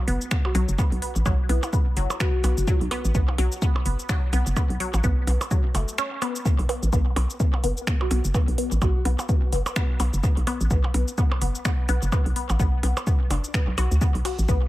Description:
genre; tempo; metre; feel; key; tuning
minimal techno; 127 BPM; 4/4; swing 58% on 16ths; unclear; A4 = 440 Hz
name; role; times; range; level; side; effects
resonant blip pluck; riff; 0.1-14.5 s; F#3 to F#4; -31 LUFS; left 2 dB; phaser, sidechain pumping, analog delay
hollow knocking FM bass; bass; 0.1-14.6 s; F#1 to D2; -23 LUFS; equal; sidechain pumping
garage drum kit; drums; 0.1-14.6 s; cabasa, finger snaps, hi-hat, ride cymbal; -33 LUFS; equal; dub echo
electronic kick drum; drums; 0.3-14.6 s; none; -23 LUFS; equal; none
percussion blips; percussion; 0.4-14.4 s; none; -34 LUFS; right 2 dB; tape echo
breathy flute-like synth lead; melody; 0.5-2.9, 8.0-9.0 s; E4 to F#4; -34 LUFS; left 1 dB; wide subtle chorus, dub echo
room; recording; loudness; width
digital ambience; echo-heavy mix; -21 LUFS; side -16 dB against mid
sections
0.0-14.7 A section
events
break 6.0-6.5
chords
0.0 B5

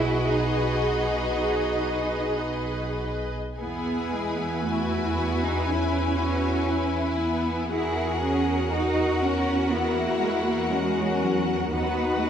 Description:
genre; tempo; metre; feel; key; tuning
classical, slow romantic movement for string orchestra; 54-63 BPM; 4/4; rubato; E major; A4 = 441 Hz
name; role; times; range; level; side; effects
clear studio violin section; melody; 0.0-12.3 s; D#5 to G#5; -33 LUFS; left 4 dB; none
rich studio violin section; second line; 0.0-12.3 s; C#4 to G#4; -30 LUFS; left 4 dB; none
clear symphonic viola section; accompaniment; 0.0-12.3 s; E4 to B4; -28 LUFS; equal; none
rich studio cello section; bass; 0.0-12.3 s; F#3 to E4; -28 LUFS; right 3 dB; none
rich studio double bass section; bass; 0.0-12.3 s; B1 to E2; -30 LUFS; right 2 dB; none
room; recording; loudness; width
wet scoring stage reverb, RT60 1.5 s; none; -23 LUFS; side -8 dB against mid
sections
0.0-12.3 A section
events
none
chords
0.0 B; 3.6 E; 7.7 F#7/E; 11.7 B/D#

